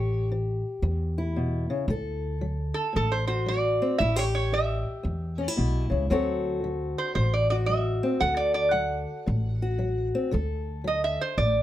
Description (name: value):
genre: acoustic country blues, solo or duo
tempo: 114 BPM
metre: 4/4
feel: swing 65% on 8ths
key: unclear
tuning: A4 = 440 Hz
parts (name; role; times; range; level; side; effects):
- lap resonator guitar; melody; 0.0-11.6 s; A4 to F#5; -26 LUFS; right 2 dB; plate reverb
- fingerpicked old ladder-braced acoustic guitar; accompaniment; 0.0-11.6 s; E2 to A4; -30 LUFS; left 2 dB; none
- upright bass; bass; 0.0-11.6 s; A1 to E2; -28 LUFS; equal; none
room: light reverb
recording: none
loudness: -24 LUFS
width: side -13 dB against mid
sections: 0.0-11.6 A section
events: none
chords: 0.0 A7(no3); 1.9 D; 4.0 A7; 6.1 D7